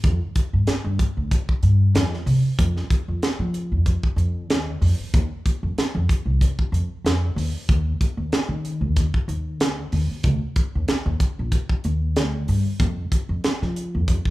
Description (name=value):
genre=electric jazz fusion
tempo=94 BPM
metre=4/4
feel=swing 55% on 16ths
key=unclear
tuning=A4 = 440 Hz
part: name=upright bass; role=bass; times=0.0-14.2 s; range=Bb1 to F3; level=-22 LUFS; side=equal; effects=none
part: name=tight funk drum kit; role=drums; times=0.0-14.3 s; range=hi-hat, kick drum, snare drum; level=-22 LUFS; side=equal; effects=none
room=moderate large studio reverb, RT60 1.4 s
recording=band playing live in one room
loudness=-20 LUFS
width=side -18 dB against mid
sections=0.0-14.3 A section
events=none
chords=none